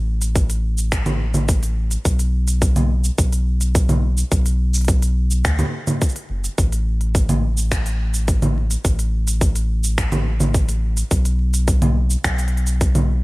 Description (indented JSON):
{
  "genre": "folktronica",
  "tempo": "106 BPM",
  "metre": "4/4",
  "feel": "straight",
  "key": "unclear",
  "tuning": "A4 = 440 Hz",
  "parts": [
    { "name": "warm sub bass", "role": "bass", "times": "0.0-13.2 s", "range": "F#1 to D2", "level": "-18 LUFS", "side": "equal", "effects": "none" },
    { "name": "organic electronic drum kit", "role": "drums", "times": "0.2-13.1 s", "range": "congas, finger snaps, hi-hat, shaker", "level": "-23 LUFS", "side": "right 1 dB", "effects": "none" },
    { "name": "electronic kick drum", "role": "drums", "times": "0.4-12.9 s", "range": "none", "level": "-18 LUFS", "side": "equal", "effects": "none" }
  ],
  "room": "little or no reverb",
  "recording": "vinyl crackle",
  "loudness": "-17 LUFS",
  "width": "side -22 dB against mid",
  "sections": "0.0-13.2 A section",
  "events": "none",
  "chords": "none"
}